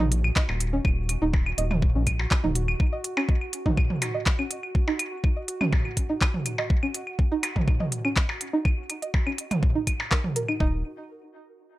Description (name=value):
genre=minimal techno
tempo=123 BPM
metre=4/4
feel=straight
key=Eb minor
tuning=A4 = 439 Hz
part: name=string-like resonator pluck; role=riff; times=0.0-10.8 s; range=Db4 to Eb5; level=-29 LUFS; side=right 2 dB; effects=chorus, sidechain pumping, dub echo
part: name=rubbery square bass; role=bass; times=0.0-2.8, 10.6-10.8 s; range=Eb1 to Bb1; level=-26 LUFS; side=equal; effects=sidechain pumping
part: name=electronic toms, claves and percussion blips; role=percussion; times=0.0-10.6 s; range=none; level=-30 LUFS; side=right 1 dB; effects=digital delay
part: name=pulsing gated texture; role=texture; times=0.0-10.6 s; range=Gb4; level=-39 LUFS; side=right 1 dB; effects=chorus, built-in reverb, sidechain pumping
part: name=techno drum kit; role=drums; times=0.1-10.5 s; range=handclaps, hi-hat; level=-27 LUFS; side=equal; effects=none
part: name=electronic kick drum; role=drums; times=0.4-10.7 s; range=none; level=-24 LUFS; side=equal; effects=overdrive
room=light reverb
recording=none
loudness=-23 LUFS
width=side -17 dB against mid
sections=0.0-10.6 A section; 10.6-11.8 B section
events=filter sweep on synth pluck 0.0-10.6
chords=0.0 Ebm; 10.6 N.C.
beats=0.36 | 0.85 1.33 1.82 2.31 | 2.80 3.29 3.77 4.26 | 4.75 5.24 5.72 6.21 | 6.70 7.19 7.68 8.16 | 8.65 9.14 9.63 10.12 | 10.60